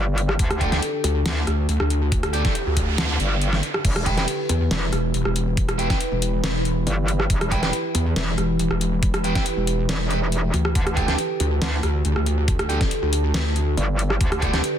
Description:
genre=heavy wobble dubstep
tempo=139 BPM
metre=4/4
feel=half-time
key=E minor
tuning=A4 = 440 Hz
part: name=evolving wavetable pad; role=sustained chords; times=0.0-14.8 s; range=D3 to B4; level=-28 LUFS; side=equal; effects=phaser, built-in reverb, sidechain pumping
part: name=metallic wobble bass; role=bass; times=0.0-14.6 s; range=E1 to D2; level=-23 LUFS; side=equal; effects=chorus, overdrive
part: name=dubstep drum kit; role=drums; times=0.2-14.7 s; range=crash cymbal, hi-hat, rim click, snare drum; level=-26 LUFS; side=equal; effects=overdrive
part: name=electronic kick drum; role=drums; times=0.4-14.5 s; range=none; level=-23 LUFS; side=equal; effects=none
part: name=distorted electric guitar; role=stabs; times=0.6-14.6 s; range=D4 to G5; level=-28 LUFS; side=right 2 dB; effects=distortion, ping-pong delay
part: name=pulsing pluck wobble bass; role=bass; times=1.0-13.8 s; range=E1 to E2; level=-22 LUFS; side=equal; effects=distortion, chorus, overdrive
part: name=noise sweep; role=sound effects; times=2.4-3.8 s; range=none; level=-30 LUFS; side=right 4 dB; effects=none
room=little or no reverb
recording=dense, heavily limited modern master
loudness=-19 LUFS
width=side -9 dB against mid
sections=0.0-14.8 A section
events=noise sweep 2.4-3.8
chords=0.0 Dsus4; 3.8 Em; 10.8 Dsus4

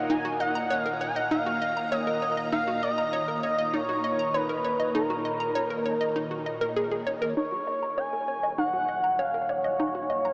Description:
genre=ambient, sequencer-driven space music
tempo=99 BPM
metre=4/4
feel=straight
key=Eb minor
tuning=A4 = 440 Hz
part: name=pulse-width lead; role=melody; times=0.0-10.3 s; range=Bb4 to Ab5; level=-27 LUFS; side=equal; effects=chorus, analog delay
part: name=phased string machine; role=sustained chords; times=0.0-10.3 s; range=Bb2 to Bb5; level=-34 LUFS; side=equal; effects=ensemble chorus, phaser
part: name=hollow square pluck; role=riff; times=0.0-10.3 s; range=Eb4 to Bb5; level=-30 LUFS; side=equal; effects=chorus, analog delay
part: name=warm sub bass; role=bass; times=7.4-10.3 s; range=Eb1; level=-51 LUFS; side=equal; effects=none
room=wet huge ambient reverb, RT60 8.7 s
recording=small speaker sound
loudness=-25 LUFS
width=side -33 dB against mid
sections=0.0-7.4 A section; 7.4-10.3 B section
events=none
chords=0.0 Ebm7

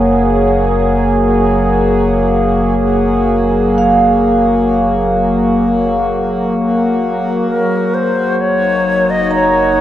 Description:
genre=ambient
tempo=free time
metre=none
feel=none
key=Gb major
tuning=A4 = 440 Hz
part: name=warm analog pad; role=sustained chords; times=0.0-9.8 s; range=Gb3 to Eb5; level=-13 LUFS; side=left 1 dB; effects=chorus
part: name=vibraphone with medium mallets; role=arpeggios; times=0.0-9.8 s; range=F5 to Bb5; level=-19 LUFS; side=right 2 dB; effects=diffuse ambient delay
part: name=round analog bass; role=bass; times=0.0-9.8 s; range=Gb1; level=-22 LUFS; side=equal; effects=none
part: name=hand-pumped harmonium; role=drone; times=0.0-9.8 s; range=Gb3 to Gb4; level=-26 LUFS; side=equal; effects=none
part: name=bright reedy wooden-headed alto flute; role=melody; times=7.5-9.8 s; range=Bb4 to Eb5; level=-14 LUFS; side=left 1 dB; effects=none
room=wet cathedral reverb, RT60 5.1 s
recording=worn, warbling old tape, cassette tape, warbly pitch drift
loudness=-11 LUFS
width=side -12 dB against mid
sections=0.0-9.8 A section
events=fade-in on harmonium 0.0-9.8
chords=0.0 Gbmaj9#11; 7.5 Ebm/Gb

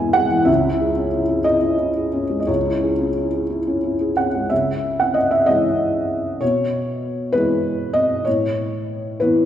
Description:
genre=neoclassical minimalist piano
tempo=58-65 BPM (dotted quarters)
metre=6/8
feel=rubato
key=unclear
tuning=A4 = 440 Hz
part: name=felt-muted upright piano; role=solo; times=0.0-9.5 s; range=E1 to G#5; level=-17 LUFS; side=equal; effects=none
room=wet scoring stage reverb, RT60 1.9 s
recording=recorded in a church or concert hall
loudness=-17 LUFS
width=side -10 dB against mid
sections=0.0-4.5 A section; 4.5-9.5 B section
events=none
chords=0.5 C#m; 6.4 E/B; 8.3 Aadd9

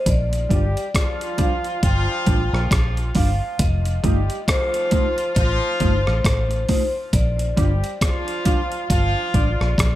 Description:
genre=roots reggae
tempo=68 BPM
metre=4/4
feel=swing 59% on 16ths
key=Bb major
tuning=A4 = 441 Hz
part: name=vibraphone with medium hard mallets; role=melody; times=0.0-10.0 s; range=C5 to G5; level=-26 LUFS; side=left 1 dB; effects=dub echo
part: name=vintage muted fingered electric bass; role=bass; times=0.1-10.0 s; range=F1 to Bb1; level=-21 LUFS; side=equal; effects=none
part: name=breakbeat sampler-style drum kit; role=drums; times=0.1-10.0 s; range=hi-hat, kick drum, rim click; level=-21 LUFS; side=equal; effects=none
part: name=warm horn section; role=second line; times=0.5-9.7 s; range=F3 to G4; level=-28 LUFS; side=left 1 dB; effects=dub echo
part: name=mellow electric guitar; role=accompaniment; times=0.5-9.5 s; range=G3 to F4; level=-29 LUFS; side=right 2 dB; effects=dub echo
room=little or no reverb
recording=none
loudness=-18 LUFS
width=side -14 dB against mid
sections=0.0-10.0 A section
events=none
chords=0.1 Bb6; 3.6 F7; 7.1 Bb6

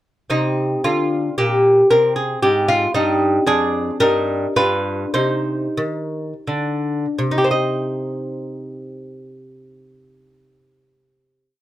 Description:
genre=classical, baroque-style dance for lute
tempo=82-116 BPM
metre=3/4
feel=rubato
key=C minor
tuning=A4 = 440 Hz
part: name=lute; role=solo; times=0.3-11.6 s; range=F2 to Eb5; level=-17 LUFS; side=equal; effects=none
room=light reverb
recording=none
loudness=-16 LUFS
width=side -14 dB against mid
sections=0.3-7.2 A section; 7.2-11.4 final chord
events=slowing down 2.7-7.2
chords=0.3 Cm; 1.9 Ab; 3.5 Ddim/F; 4.0 Eb/G; 4.6 G7; 5.2 Cm

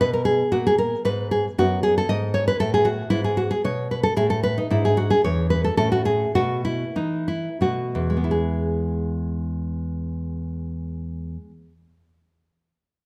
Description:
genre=classical, baroque-style dance for nylon-string guitar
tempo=84-118 BPM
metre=3/4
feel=rubato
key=E major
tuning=A4 = 440 Hz
part: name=nylon-string guitar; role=solo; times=0.0-11.7 s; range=E2 to D#5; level=-23 LUFS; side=equal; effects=none
room=moderate recital hall reverb, RT60 1.6 s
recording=none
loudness=-23 LUFS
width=mono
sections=0.0-8.3 A section; 8.3-12.4 B section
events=slowing down 3.9-8.3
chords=0.0 G#madd9; 1.6 B5/F#; 3.1 B7sus2/G#; 4.7 E7/G#; 5.8 A; 6.4 B7sus4; 7.6 B5; 8.3 E

